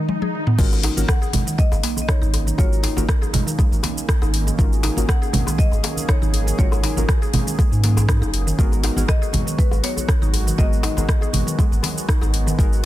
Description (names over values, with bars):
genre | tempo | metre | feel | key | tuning
afro house | 120 BPM | 4/4 | swing 54% on 16ths | unclear | A4 = 440 Hz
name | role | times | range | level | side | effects
mallet-like synth pluck | arpeggios | 0.0-12.7 s | D#3 to G#4 | -29 LUFS | equal | chorus, cassette tape, sidechain pumping, ping-pong delay
swell | sound effects | 0.0-0.6 s | none | -29 LUFS | left 1 dB | none
afro-pop drum kit | drums | 0.1-12.8 s | crash cymbal, hi-hat, rim click, shaker, toms | -26 LUFS | left 1 dB | none
warm analog pad | sustained chords | 0.6-12.9 s | D#3 to F#5 | -30 LUFS | right 2 dB | chorus, sidechain pumping
deep mellow chord stab | stabs | 0.6-12.9 s | B3 to A#4 | -32 LUFS | left 4 dB | chorus, sidechain pumping, ping-pong delay
round analog bass | bass | 0.6-12.9 s | F#1 to G#2 | -21 LUFS | equal | sidechain pumping
electronic kick drum | drums | 0.6-12.7 s | none | -18 LUFS | equal | none
congas | percussion | 0.6-12.7 s | none | -28 LUFS | right 2 dB | none
djembe | percussion | 0.7-12.6 s | none | -30 LUFS | left 2 dB | none
marimba with medium hard mallets | melody | 1.1-12.3 s | B4 to F#5 | -32 LUFS | left 4 dB | ping-pong delay
room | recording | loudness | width
little or no reverb | dense, heavily limited modern master | -17 LUFS | side -14 dB against mid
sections
0.6-12.9 A section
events
break 0.0-0.6; swell 0.0-0.6; drum fill 0.1-0.6; drop 0.6-12.9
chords
0.0 G#m; 0.6 D#m7/G#; 8.6 G#m7